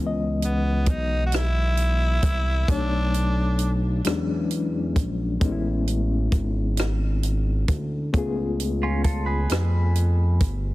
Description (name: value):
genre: slow six-eight R&B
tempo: 44 BPM (dotted quarters)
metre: 6/8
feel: straight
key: C# minor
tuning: A4 = 440 Hz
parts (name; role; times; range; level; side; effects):
- bright reed electric piano; accompaniment; 0.0-10.7 s; E3 to D#5; -29 LUFS; left 4 dB; fast tremolo
- smooth synth bass; bass; 0.0-10.7 s; G1 to E#2; -23 LUFS; equal; none
- raspy tenor saxophone; melody; 0.4-3.7 s; B3 to F#4; -28 LUFS; equal; digital delay
- compact cocktail drum kit; drums; 0.4-10.6 s; hi-hat, kick drum, rim click; -24 LUFS; equal; none
- semi-hollow electric guitar; second line; 8.8-10.6 s; C#4 to B4; -31 LUFS; right 3 dB; phaser
room: little or no reverb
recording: heavily compressed radio sound, multiband compression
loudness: -21 LUFS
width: side -18 dB against mid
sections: 0.0-10.7 A section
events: none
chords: 0.0 C#m7; 2.7 Bm7; 4.1 E13; 5.4 Amaj9; 8.1 C#7b13